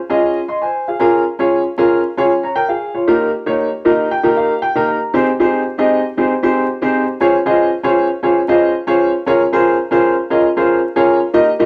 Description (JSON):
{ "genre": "soul", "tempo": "116 BPM", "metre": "4/4", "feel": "straight", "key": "Ab major", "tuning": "A4 = 436 Hz", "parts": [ { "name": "warm concert grand piano", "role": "solo", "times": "0.1-11.7 s", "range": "Bb3 to C6", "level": "-15 LUFS", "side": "equal", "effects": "none" } ], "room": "light reverb", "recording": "vinyl crackle", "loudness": "-15 LUFS", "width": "mono", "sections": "0.0-5.1 A section; 5.1-11.7 B section", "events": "grand piano fill 3.6-5.1", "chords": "0.0 Dbmaj7; 1.0 Bbm7/Db; 3.1 Eb; 5.1 Abmaj7; 7.2 Dbmaj7; 9.3 Bbm7/Db", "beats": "0.48 | 1.00 1.52 2.04 2.55 | 3.07 3.59 4.11 4.62 | 5.14 5.66 6.17 6.69 | 7.21 7.72 8.24 8.76 | 9.27 9.79 10.31 10.82 | 11.34" }